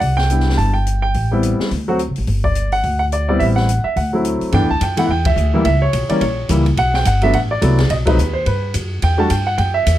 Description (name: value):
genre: jazz piano trio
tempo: 213 BPM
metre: 4/4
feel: swing 59% on 8ths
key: G major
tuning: A4 = 440 Hz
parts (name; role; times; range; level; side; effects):
- warm baby grand piano; melody; 0.0-10.0 s; E3 to A5; -17 LUFS; right 1 dB; none
- upright bass; bass; 0.0-10.0 s; G1 to G2; -17 LUFS; equal; none
- open jazz drum kit; drums; 0.0-9.9 s; hi-hat, kick drum, ride cymbal, snare drum; -24 LUFS; left 2 dB; none
room: little or no reverb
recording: none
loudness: -14 LUFS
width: side -13 dB against mid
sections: 0.0-4.5 A section; 4.5-10.0 B section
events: band accent 5.2, 8.0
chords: 0.0 Cmaj9; 1.1 Am9; 1.7 D7; 2.3 Gmaj7(no3); 3.4 Am7; 4.0 D7; 4.5 G69; 5.7 A#dim7; 6.8 Bm7; 7.9 B; 9.0 Emadd9